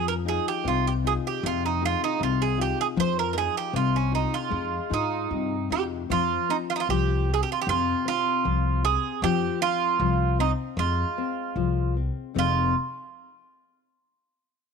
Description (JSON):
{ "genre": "fado-style ballad", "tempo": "77 BPM", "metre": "2/4", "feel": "rubato", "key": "F minor", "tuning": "A4 = 440 Hz", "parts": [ { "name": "Greek bouzouki", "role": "melody", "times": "0.0-12.7 s", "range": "Db4 to C5", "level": "-26 LUFS", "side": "right 9 dB", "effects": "none" }, { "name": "nylon-string guitar", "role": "accompaniment", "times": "0.0-12.7 s", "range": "F2 to Ab4", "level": "-29 LUFS", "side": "left 14 dB", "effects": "none" }, { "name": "upright bass", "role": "bass", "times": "0.0-12.7 s", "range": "F1 to Ab2", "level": "-28 LUFS", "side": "left 1 dB", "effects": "none" } ], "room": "light reverb, small room ambience", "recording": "1960s-style stereo with parts hard left and right", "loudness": "-23 LUFS", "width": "side -6 dB against mid", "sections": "0.0-6.1 A section; 6.1-12.4 B section; 12.4-13.9 C section", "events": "none", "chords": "0.0 Fm7; 6.1 Fm; 12.4 Fm7" }